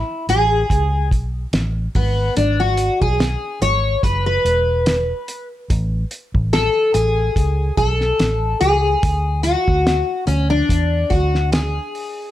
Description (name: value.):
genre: indie pop, bedroom pop.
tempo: 72 BPM.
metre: 4/4.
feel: swing 55% on 16ths.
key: A major.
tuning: A4 = 438 Hz.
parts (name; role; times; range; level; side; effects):
picked steel-string acoustic guitar; accompaniment; 0.0-12.3 s; B3 to C#5; -18 LUFS; left 1 dB; analog chorus, warbly pitch drift, plate reverb.
vintage muted fingered electric bass; bass; 0.3-11.8 s; E1 to E2; -20 LUFS; equal; none.
cloth-damped thuddy drum kit; drums; 0.3-12.2 s; hi-hat, kick drum, snare drum; -21 LUFS; equal; none.
room: light reverb.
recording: none.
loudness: -16 LUFS.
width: side -13 dB against mid.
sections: 0.0-12.3 A section.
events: steel-string acoustic guitar solo 0.0-12.3.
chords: 0.0 Amaj7; 2.0 E/G#; 5.7 Amaj7; 9.0 D; 10.7 E7.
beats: 0.70 1.53 | 2.37 3.20 4.03 4.87 | 5.70 6.53 7.37 8.20 | 9.03 9.86 10.70 11.53.